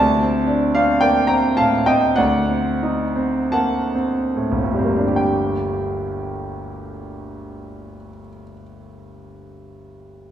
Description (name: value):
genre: classical, romantic nocturne for solo piano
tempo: 33-58 BPM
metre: 4/4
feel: rubato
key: G minor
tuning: A4 = 439 Hz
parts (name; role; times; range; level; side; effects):
- clear concert grand piano; solo; 0.0-10.3 s; G1 to Bb5; -17 LUFS; equal; none
room: wet recital hall reverb, RT60 1.6 s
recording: minimal, uncompressed stereo recording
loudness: -17 LUFS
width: side -10 dB against mid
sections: 0.0-5.2 A section; 5.2-10.3 B section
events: slowing down 0.0-5.2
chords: 0.0 D7sus4; 2.2 D7b9; 5.2 Gm